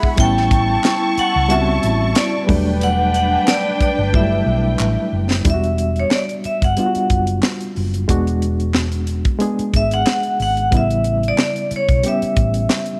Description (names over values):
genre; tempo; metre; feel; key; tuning
lush 1970s-style soul; 91 BPM; 4/4; swing 54% on 16ths; E dorian; A4 = 440 Hz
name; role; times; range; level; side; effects
vibraphone with hard mallets; melody; 0.0-13.0 s; C#5 to G5; -22 LUFS; equal; none
warm studio string section; second line; 0.0-5.4 s; D4 to C#6; -25 LUFS; equal; none
barky reed electric piano; accompaniment; 0.0-13.0 s; C#3 to G#4; -24 LUFS; equal; overdrive, fast tremolo
tight funk drum kit; drums; 0.0-13.0 s; hi-hat, kick drum, snare drum; -21 LUFS; equal; none
hollow-body short-scale fingered electric bass; bass; 0.2-12.7 s; E1 to C#2; -22 LUFS; equal; none
group handclap; percussion; 0.8-12.9 s; none; -32 LUFS; equal; none
room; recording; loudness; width
light reverb, small room reverb; none; -17 LUFS; mono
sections
0.0-5.4 A section; 5.4-13.0 B section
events
drum fill 4.1-5.4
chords
0.2 A7; 2.5 Em11; 5.4 Em9; 8.1 E9; 10.7 A7